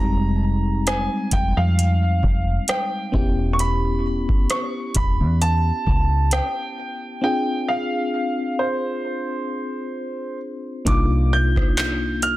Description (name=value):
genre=contemporary R&B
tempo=66 BPM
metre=4/4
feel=swing 54% on 16ths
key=unclear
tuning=A4 = 440 Hz
part: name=warm baby grand piano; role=melody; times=0.0-12.4 s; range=C5 to G6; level=-26 LUFS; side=right 1 dB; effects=digital delay
part: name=FM electric piano with auto-pan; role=accompaniment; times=0.0-12.4 s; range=G3 to Ab4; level=-26 LUFS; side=left 2 dB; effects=none
part: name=deep dub fingered electric bass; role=bass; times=0.0-12.4 s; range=E1 to F2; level=-20 LUFS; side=equal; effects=none
part: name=booming analog drum machine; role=drums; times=0.9-12.4 s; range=handclaps, hi-hat, kick drum, rim click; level=-22 LUFS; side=equal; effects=soft clipping on snare
room=light reverb, digital ambience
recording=dense, heavily limited modern master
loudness=-19 LUFS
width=side -16 dB against mid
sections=0.0-10.9 A section; 10.9-12.4 B section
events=break 7.2-10.9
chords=0.0 Fm7; 3.1 A7/E; 7.2 Dm7b5; 10.9 Cm11